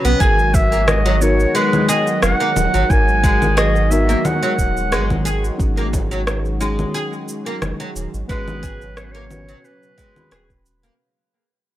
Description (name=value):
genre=organic downtempo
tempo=89 BPM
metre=4/4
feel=swing 54% on 16ths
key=unclear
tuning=A4 = 439 Hz
part: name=muted felt-like synth keys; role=accompaniment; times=0.0-11.0 s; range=D#3 to B5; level=-26 LUFS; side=left 2 dB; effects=chorus, sidechain pumping, analog delay
part: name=warm analog pad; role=sustained chords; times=0.0-11.0 s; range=B2 to F#4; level=-26 LUFS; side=equal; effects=chorus, sidechain pumping
part: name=oud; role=arpeggios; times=0.0-10.9 s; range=F#3 to G#4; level=-23 LUFS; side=left 1 dB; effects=analog delay
part: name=warm sub bass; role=bass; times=0.0-10.9 s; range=D#1 to B1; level=-20 LUFS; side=equal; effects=transformer saturation
part: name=bronze singing bowl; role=texture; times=0.0-11.0 s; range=none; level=barely audible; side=none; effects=none
part: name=electronic cabasa, rim click and congas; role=drums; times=0.1-11.0 s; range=none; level=-22 LUFS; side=equal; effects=none
part: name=warm clarinet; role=melody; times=0.2-10.7 s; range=B4 to G#5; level=-20 LUFS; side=right 1 dB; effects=analog delay
part: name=electronic kick drum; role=drums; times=0.2-10.6 s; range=none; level=-19 LUFS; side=equal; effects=none
room=little or no reverb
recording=dry, gritty hardware recording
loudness=-15 LUFS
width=side -13 dB against mid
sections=0.0-11.0 A section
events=fade-out 3.8-11.0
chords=0.2 G#m7; 5.6 B6/G#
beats=| 0.20 0.88 1.55 2.23 | 2.90 3.58 4.25 4.92 | 5.60 6.27 6.95 7.62 | 8.29 8.97 9.64 10.32